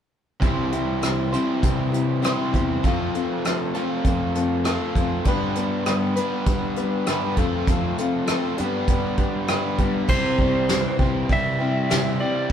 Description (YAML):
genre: folk rock and heartland rock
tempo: 99 BPM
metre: 4/4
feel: straight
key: unclear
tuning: A4 = 440 Hz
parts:
  - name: picked steel-string acoustic guitar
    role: accompaniment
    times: 0.4-12.5 s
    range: G2 to B4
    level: -27 LUFS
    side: left 5 dB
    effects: none
  - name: overdriven electric guitar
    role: riff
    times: 0.4-12.5 s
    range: C3 to C5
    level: -25 LUFS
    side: right 1 dB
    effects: none
  - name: fingered electric bass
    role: bass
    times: 0.4-12.5 s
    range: C2 to G3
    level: -29 LUFS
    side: equal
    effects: none
  - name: soft brush drum kit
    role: drums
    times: 0.4-12.5 s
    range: crash cymbal, hi-hat, kick drum, rim click, snare drum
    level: -24 LUFS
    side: equal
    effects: none
  - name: clean lap steel guitar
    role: melody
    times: 10.1-12.5 s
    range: C5 to E5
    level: -25 LUFS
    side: right 2 dB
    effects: analog delay
room: wet stone room reverb, RT60 1.2 s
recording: band playing live in one room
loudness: -20 LUFS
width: side -9 dB against mid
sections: 0.4-10.1 A section; 10.1-12.5 B section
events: none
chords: 0.4 C; 2.8 F; 5.3 G; 7.4 F; 8.6 G; 10.1 C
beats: | 0.43 1.03 1.64 2.24 | 2.85 3.45 4.06 4.66 | 5.27 5.87 6.47 7.08 | 7.68 8.29 8.89 9.49 | 10.10 10.70 11.30 11.90 | 12.51